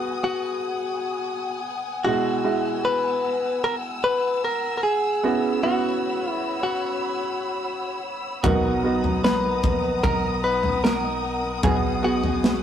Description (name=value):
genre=pop ballad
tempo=75 BPM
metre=4/4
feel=straight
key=B major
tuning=A4 = 442 Hz
part: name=direct-recorded clean electric guitar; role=melody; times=0.0-12.6 s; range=F#4 to B4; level=-25 LUFS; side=left 2 dB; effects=none
part: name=clear concert grand piano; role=accompaniment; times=0.0-12.6 s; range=B2 to A#4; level=-27 LUFS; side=right 3 dB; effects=none
part: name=warm studio string section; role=sustained chords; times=0.0-12.6 s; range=B3 to E6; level=-30 LUFS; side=left 2 dB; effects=none
part: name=picked steel-string acoustic guitar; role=arpeggios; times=8.4-12.6 s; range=B2 to A#4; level=-32 LUFS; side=left 2 dB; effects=none
part: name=fingered electric bass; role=bass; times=8.4-12.6 s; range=A#1 to B1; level=-31 LUFS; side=equal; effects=none
part: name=modern studio drum kit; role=drums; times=8.4-12.6 s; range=kick drum, snare drum, toms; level=-24 LUFS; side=equal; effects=none
room=wet small room reverb, RT60 0.6 s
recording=rough rehearsal-room recording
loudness=-21 LUFS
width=side -9 dB against mid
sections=0.0-12.6 A section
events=none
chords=0.0 G#m7/B; 2.0 Eadd9; 5.2 F#7sus4; 8.4 Bmaj7; 11.6 G#m7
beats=0.44 1.24 | 2.04 2.84 3.64 4.44 | 5.24 6.04 6.84 7.64 | 8.44 9.24 10.04 10.84 | 11.64 12.44